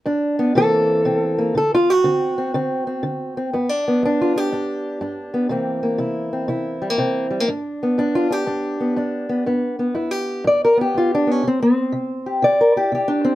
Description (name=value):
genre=acoustic country blues, solo or duo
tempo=121 BPM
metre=4/4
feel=swing 67% on 8ths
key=unclear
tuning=A4 = 439 Hz
part: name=fingerpicked old ladder-braced acoustic guitar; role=solo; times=0.0-13.3 s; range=G2 to D5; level=-17 LUFS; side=equal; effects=none
room=moderate small room reverb, RT60 0.5 s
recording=none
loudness=-17 LUFS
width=side -15 dB against mid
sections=0.0-3.5 A section; 3.5-13.3 B section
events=steel-string acoustic guitar solo 0.0-3.5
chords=0.0 G; 0.6 C7; 1.6 D7; 3.5 G; 5.5 C7; 7.5 G; 11.4 C